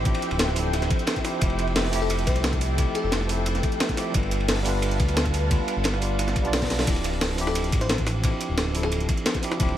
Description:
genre	liquid drum and bass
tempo	176 BPM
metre	4/4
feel	straight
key	D dorian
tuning	A4 = 436 Hz
part	tine electric piano	accompaniment	0.0-9.8 s	F3 to D5	-29 LUFS	equal	medium stereo tremolo, ping-pong delay
part	ethereal airy pad	sustained chords	0.0-6.8 s	A4 to A5	-32 LUFS	equal	ensemble chorus, built-in reverb, sidechain pumping
part	smooth gliding synth bass	bass	0.0-9.8 s	D1 to D2	-27 LUFS	equal	none
part	breakbeat sampler-style drum kit	drums	0.1-9.7 s	hi-hat, snare drum	-29 LUFS	equal	none
part	crunchy breakbeat drum kit	drums	0.1-9.8 s	hi-hat, ride cymbal, snare drum	-32 LUFS	equal	high-pass filter on cymbals, high-pass filter on hats, high-pass filter on snare, high-pass filter on room
part	electronic kick drum	drums	0.1-9.7 s	none	-26 LUFS	equal	none
part	bell-like FM electric piano	melody	2.0-3.3, 7.5-9.1 s	A4 to C5	-35 LUFS	left 5 dB	none
room	studio reverb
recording	none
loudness	-22 LUFS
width	side -11 dB against mid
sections	0.0-6.9 A section; 6.9-9.8 A section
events	drop 0.0-6.9, 6.9-9.8; drum fill 6.7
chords	0.0 Dm11; 1.4 Fmaj9; 4.1 G7; 6.9 Dm11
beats	| 0.05 0.40 0.74 1.08 | 1.42 1.76 2.10 2.44 | 2.78 3.12 3.46 3.80 | 4.14 4.49 4.83 5.17 | 5.51 5.85 6.19 6.53 | 6.87 7.21 7.55 7.89 | 8.24 8.58 8.92 9.26 | 9.60

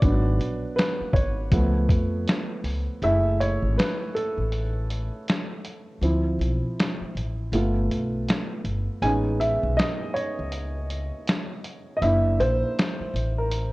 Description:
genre	lo-fi hip hop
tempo	80 BPM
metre	4/4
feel	swing 63% on 16ths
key	unclear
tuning	A4 = 440 Hz
part	warm upright piano	accompaniment	0.0-13.7 s	E#3 to G#5	-26 LUFS	right 1 dB	low-pass filter
part	upright bass	bass	0.0-13.7 s	F#1 to E#2	-25 LUFS	equal	none
part	lo-fi sampler-style drum kit	drums	0.0-13.7 s	hi-hat, kick drum, snare drum	-26 LUFS	equal	none
room	light reverb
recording	worn, warbling old tape, cassette tape, warbly pitch drift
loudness	-22 LUFS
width	side -20 dB against mid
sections	0.0-3.0 A section; 3.0-13.7 B section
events	upright piano solo 0.0-3.0, 3.0-13.7; kick muted 3.0-13.7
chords	0.0 G#m7b5; 1.5 C#7b13; 3.0 F#m9; 6.0 Dm7; 7.5 G9; 9.0 Amaj9#11; 12.0 F#7alt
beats	| 0.02 0.77 1.52 2.27 | 3.02 3.77 4.52 5.27 | 6.02 6.77 7.52 8.27 | 9.02 9.77 10.52 11.27 | 12.02 12.77 13.52

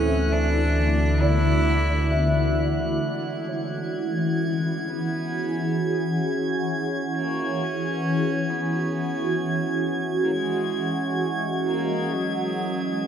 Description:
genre	ambient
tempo	free time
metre	none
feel	none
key	unclear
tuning	A4 = 437 Hz
part	clear cello	melody	0.0-13.1 s	F#3 to E4	-31 LUFS	equal	dub echo
part	shimmering ambient pad	sustained chords	0.0-13.1 s	D3 to E5	-25 LUFS	equal	chorus, built-in reverb, phaser
part	felt-muted upright piano	arpeggios	0.0-10.3 s	A4 to E5	-31 LUFS	equal	dub echo
part	warm sub bass	bass	0.0-3.0 s	D2	-23 LUFS	equal	none
part	analog drone	drone	0.0-13.1 s	E3 to C#4	-31 LUFS	equal	chorus
part	drifting glass-harmonics texture	texture	0.0-13.1 s	F#6 to G#6	-32 LUFS	equal	chorus, built-in reverb
room	wet plate reverb, RT60 2.7 s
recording	echo-heavy mix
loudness	-22 LUFS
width	side -8 dB against mid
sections	0.0-3.0 A section; 3.0-13.1 B section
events	fade-in on felt piano 3.0-13.1; fade-in on cello 3.0-13.1; filter sweep on ambient pad 3.0-13.1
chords	0.0 Dadd9; 3.0 E6; 10.3 G#7(no3)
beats	free time

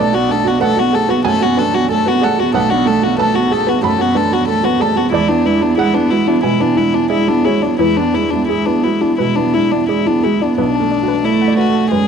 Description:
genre	neoclassical piano and strings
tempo	85-94 BPM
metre	4/4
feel	rubato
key	B dorian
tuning	A4 = 440 Hz
part	rich violin	melody	0.0-12.1 s	D4 to A4	-17 LUFS	left 9 dB	none
part	dark cello	second line	0.0-12.1 s	G#3 to B3	-17 LUFS	right 3 dB	none
part	felt-muted upright piano	accompaniment	0.0-12.1 s	B1 to B5	-17 LUFS	right 9 dB	none
part	soft round pluck	arpeggios	0.0-12.0 s	E4 to A5	-23 LUFS	left 11 dB	chorus, tape echo
room	studio reverb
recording	dry, close 1970s-style studio recording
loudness	-12 LUFS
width	side -7 dB against mid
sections	0.0-10.6 A section; 10.6-12.1 B section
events	none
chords	0.0 Bm7; 5.1 E7; 10.6 Bm7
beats	0.61 1.26 1.90 | 2.55 3.19 3.83 4.48 | 5.13 5.78 6.44 7.11 | 7.80 8.50 9.19 9.89 | 10.58 11.24 11.90

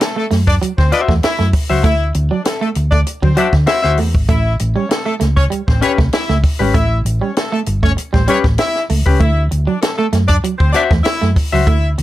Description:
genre	funk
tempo	98 BPM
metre	4/4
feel	straight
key	unclear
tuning	A4 = 441 Hz
part	clear horn section	second line	0.0-11.9 s	A3 to E5	-20 LUFS	left 1 dB	none
part	electric guitar at the edge of break-up	riff	0.0-12.0 s	F#3 to A3	-21 LUFS	right 6 dB	none
part	compact cocktail drum kit	drums	0.0-12.0 s	hi-hat, kick drum, snare drum	-16 LUFS	equal	none
part	hollow-body short-scale fingered electric bass	bass	0.3-12.0 s	G1 to D3	-15 LUFS	equal	none
part	semi-hollow electric guitar	accompaniment	0.9-11.7 s	C#4 to E5	-17 LUFS	left 6 dB	none
room	little or no reverb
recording	none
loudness	-12 LUFS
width	side -15 dB against mid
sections	0.0-12.0 A section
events	none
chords	0.0 D9; 4.3 A9; 9.2 Dadd9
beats	0.00 0.62 1.23 | 1.84 2.45 3.07 3.68 | 4.29 4.90 5.52 6.13 | 6.74 7.36 7.97 8.59 | 9.20 9.82 10.44 11.05 | 11.67

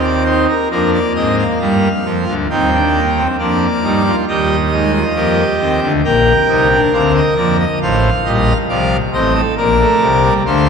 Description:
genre	classical, baroque-style 4-part fugue for pipe organ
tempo	68 BPM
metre	4/4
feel	straight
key	Eb major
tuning	A4 = 440 Hz
part	pipe organ, full organ	solo	0.0-10.7 s	A1 to G5	-12 LUFS	equal	none
room	wet cathedral reverb, RT60 4.8 s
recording	none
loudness	-12 LUFS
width	side -6 dB against mid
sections	0.0-10.7 A section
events	none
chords	0.0 Eb5; 0.7 Bb7/F; 6.0 Bb; 7.8 F7/A; 9.6 Bb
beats	0.71 1.61 | 2.50 3.39 4.28 5.17 | 6.05 6.93 7.82 8.70 | 9.58 10.46

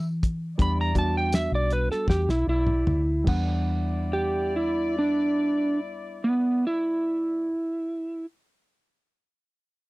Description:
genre	straight-eighth soul blues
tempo	71-85 BPM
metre	4/4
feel	straight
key	E minor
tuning	A4 = 440 Hz
part	warm horn section	sustained chords	0.0-7.5 s	E4 to D5	-37 LUFS	left 5 dB	none
part	vintage muted fingered electric bass	bass	0.0-7.5 s	B1 to E3	-27 LUFS	left 1 dB	none
part	cloth-damped thuddy drum kit	drums	0.2-3.5 s	crash cymbal, hi-hat, kick drum, snare drum, tambourine, toms	-26 LUFS	left 1 dB	none
part	electric slide guitar	melody	0.6-8.3 s	B3 to B5	-24 LUFS	right 1 dB	none
part	overdriven reed electric piano	accompaniment	0.6-7.5 s	G3 to F#5	-32 LUFS	right 2 dB	none
room	little or no reverb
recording	dry, close 1970s-style studio recording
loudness	-23 LUFS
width	side -21 dB against mid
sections	0.0-3.7 A section; 3.7-7.1 B section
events	slowing down 0.0-3.7; electric slide guitar solo 0.0-3.7; drum fill 2.1-3.7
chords	0.0 Em7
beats	| 0.59 1.32 2.08 2.87 | 3.69 4.53 5.37 6.21

